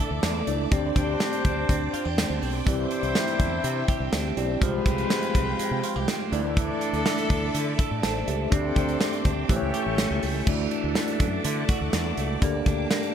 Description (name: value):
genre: 1980s-style pop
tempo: 123 BPM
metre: 4/4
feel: straight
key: C major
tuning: A4 = 440 Hz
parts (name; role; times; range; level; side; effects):
- mellow tine electric piano; accompaniment; 0.0-13.1 s; Ab3 to A5; -30 LUFS; left 1 dB; medium stereo tremolo
- phased string machine; sustained chords; 0.0-13.1 s; Ab3 to D6; -34 LUFS; left 1 dB; ensemble chorus, phaser
- direct-recorded clean electric guitar; riff; 0.0-13.1 s; E3 to A4; -33 LUFS; right 8 dB; lush chorus, digital delay
- warm horn section; stabs; 0.0-10.2 s; C4 to C5; -31 LUFS; left 2 dB; none
- fretless electric bass; bass; 0.1-12.8 s; A1 to D3; -30 LUFS; equal; none
- modern studio drum kit; drums; 0.2-13.1 s; crash cymbal, hi-hat, kick drum, snare drum, tambourine; -26 LUFS; equal; gated reverb
room: light reverb, small room reverb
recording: none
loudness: -23 LUFS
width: side -8 dB against mid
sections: 0.0-10.5 A section; 10.5-13.1 A section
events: none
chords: 0.0 Dsus2; 0.7 Gsus4/D; 2.7 Cadd9; 4.6 Fmadd9/C; 6.3 Dsus2; 8.5 Gsus4/D; 9.5 A7; 10.5 Dadd9; 12.4 Gmadd9/D